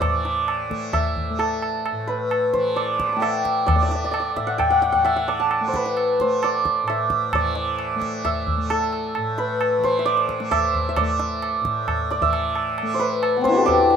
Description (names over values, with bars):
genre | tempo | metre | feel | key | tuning
indian classical, Hindustani | 132 BPM | 4/4 | straight | A raga bhimpalasi | A4 = 440 Hz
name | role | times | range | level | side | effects
santur | melody | 0.0-14.0 s | B3 to C6 | -20 LUFS | equal | none
tanpura | drone | 0.0-14.0 s | A2 to A3 | -30 LUFS | left 1 dB | none
tabla | percussion | 0.0-14.0 s | none | -26 LUFS | right 1 dB | none
room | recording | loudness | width
moderate studio reverb, RT60 0.6 s | minimal, uncompressed stereo recording | -19 LUFS | side -7 dB against mid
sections
0.0-7.3 A section; 7.3-14.0 B section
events
none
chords
none